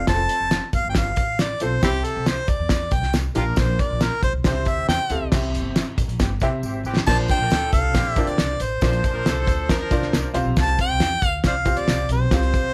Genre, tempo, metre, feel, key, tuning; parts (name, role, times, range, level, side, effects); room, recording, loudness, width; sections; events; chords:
uptempo 1960s-style soul; 137 BPM; 4/4; straight; A4 = 440 Hz
mellow harmonica; melody; 0.0-12.7 s; C4 to A5; -26 LUFS; equal
upright bass; bass; 0.0-12.7 s; F1 to C3; -28 LUFS; equal
clear grand piano; accompaniment; 0.1-12.7 s; Bb2 to F5; -30 LUFS; equal
cloth-damped thuddy drum kit; drums; 0.1-12.6 s; crash cymbal, hi-hat, kick drum, snare drum; -24 LUFS; equal
tambourine; percussion; 0.1-12.6 s; -46 LUFS; equal
warm horn section; second line; 6.2-10.3 s; D3 to C5; -32 LUFS; equal
light reverb; vinyl crackle; -21 LUFS; mono
0.0-5.3 A section; 5.3-7.1 B section; 7.1-12.7 C section
harmonica solo 0.0-5.3; drum fill 6.6-7.1
0.0 F; 1.8 C; 3.4 Bb; 4.5 C; 7.1 Bbadd9; 10.3 Csus4